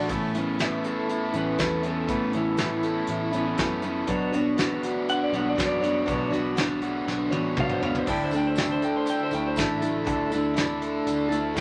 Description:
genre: folk rock and heartland rock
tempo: 120 BPM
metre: 4/4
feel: straight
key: unclear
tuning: A4 = 440 Hz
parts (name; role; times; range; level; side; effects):
- picked steel-string acoustic guitar; accompaniment; 0.0-11.6 s; A2 to C#5; -30 LUFS; equal; none
- tonewheel organ; sustained chords; 0.0-11.6 s; D4 to C#6; -42 LUFS; equal; none
- overdriven electric guitar; riff; 0.0-11.6 s; B2 to A4; -32 LUFS; equal; none
- picked electric bass; bass; 0.0-11.6 s; A1 to F#2; -38 LUFS; equal; none
- soft brush drum kit; drums; 0.1-11.6 s; crash cymbal, hi-hat, kick drum, snare drum, toms; -32 LUFS; equal; none
- clean lap steel guitar; second line; 0.6-11.6 s; E4 to G5; -33 LUFS; equal; none
- tambourine; percussion; 8.1-11.6 s; none; -51 LUFS; equal; none
room: moderate studio ambience, RT60 0.5 s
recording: none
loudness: -26 LUFS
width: mono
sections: 0.1-11.6 A section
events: electric slide guitar solo 0.1-11.6; drum fill 7.1-8.1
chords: 0.1 Aadd9; 4.1 Bmadd9; 8.1 Dsus2

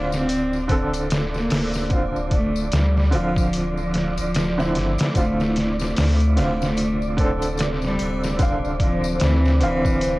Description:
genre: trip hop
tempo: 74 BPM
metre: 4/4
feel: swing 59% on 16ths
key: D minor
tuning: A4 = 439 Hz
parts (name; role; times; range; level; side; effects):
- rich cello; melody; 0.0-10.2 s; E3 to C4; -25 LUFS; equal; cassette tape, dub echo
- bright upright piano; accompaniment; 0.0-10.2 s; D3 to F5; -26 LUFS; right 1 dB; tremolo, cassette tape
- warm sub bass; bass; 0.0-10.2 s; D1 to D2; -24 LUFS; equal; tube saturation
- wind-like tuned noise texture; texture; 0.0-10.2 s; D5; -32 LUFS; right 2 dB; built-in reverb, cassette tape
- trip hop sampler-style drum kit; drums; 0.1-10.2 s; hi-hat, kick drum, snare drum; -23 LUFS; equal; cassette tape
- tambourine and triangle; percussion; 0.1-10.2 s; none; -41 LUFS; left 10 dB; none
- dark analog pad; sustained chords; 5.1-10.2 s; C4 to C5; -28 LUFS; equal; chorus, vintage 12-bit sampler grit, cassette tape
room: light reverb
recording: home recording on cassette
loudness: -18 LUFS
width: side -20 dB against mid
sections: 0.0-10.2 A section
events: none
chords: 0.0 Dm7

